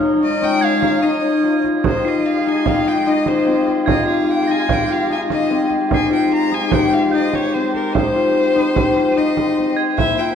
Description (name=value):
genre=contemporary instrumental, chamber music in an uneven meter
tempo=148 BPM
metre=5/4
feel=straight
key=F minor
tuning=A4 = 435 Hz
part: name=dark studio string section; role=sustained chords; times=0.0-10.3 s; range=Ab3 to F5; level=-24 LUFS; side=right 1 dB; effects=none
part: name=concert harp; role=arpeggios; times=0.0-10.3 s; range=C4 to G4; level=-17 LUFS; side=left 3 dB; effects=none
part: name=bright violin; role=melody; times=0.2-10.3 s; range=Bb4 to Bb5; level=-21 LUFS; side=left 3 dB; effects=none
part: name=frame drum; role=percussion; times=0.4-10.2 s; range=none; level=-22 LUFS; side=right 6 dB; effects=none
part: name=crotales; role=texture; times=0.6-10.3 s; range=G6 to Eb7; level=-27 LUFS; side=right 8 dB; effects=none
room=wet recital hall reverb, RT60 1.4 s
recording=worn, warbling old tape, cassette tape, warbly pitch drift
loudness=-14 LUFS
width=side -8 dB against mid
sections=0.0-1.8 A section; 1.8-10.3 B section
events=none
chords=0.0 Eb7sus4; 1.8 Fm9; 5.9 Abmaj7